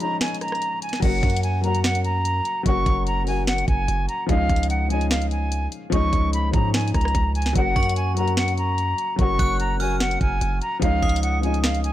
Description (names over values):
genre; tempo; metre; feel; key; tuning
hip hop, trap; 147 BPM; 4/4; half-time; F# major; A4 = 441 Hz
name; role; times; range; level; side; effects
breathy bright silver concert flute; melody; 0.0-11.9 s; E#5 to C#6; -25 LUFS; right 1 dB; low-pass filter
dark baby grand piano; accompaniment; 0.0-11.9 s; E#3 to F#4; -27 LUFS; left 4 dB; low-pass filter
trap drum kit; drums; 0.0-11.9 s; crash cymbal, hi-hat, kick drum, rim click, snare drum; -24 LUFS; equal; none
distorted 808-style bass; bass; 1.0-11.9 s; F#1 to G#2; -24 LUFS; right 1 dB; distortion
metallic FM bell; second line; 7.8-11.9 s; C#6 to F#6; -34 LUFS; right 3 dB; chorus, tape echo
room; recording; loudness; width
digital ambience; none; -19 LUFS; side -13 dB against mid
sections
0.0-1.0 A section; 1.0-11.9 B section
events
break 0.0-1.0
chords
0.0 C#add9; 1.0 F#; 4.3 C#add9; 7.6 F#; 10.8 C#add9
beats
0.21 0.62 | 1.02 1.43 1.84 2.25 | 2.66 3.07 3.47 3.88 | 4.29 4.70 5.11 5.51 | 5.92 6.33 6.74 7.15 | 7.56 7.96 8.37 8.78 | 9.19 9.60 10.01 10.41 | 10.82 11.23 11.64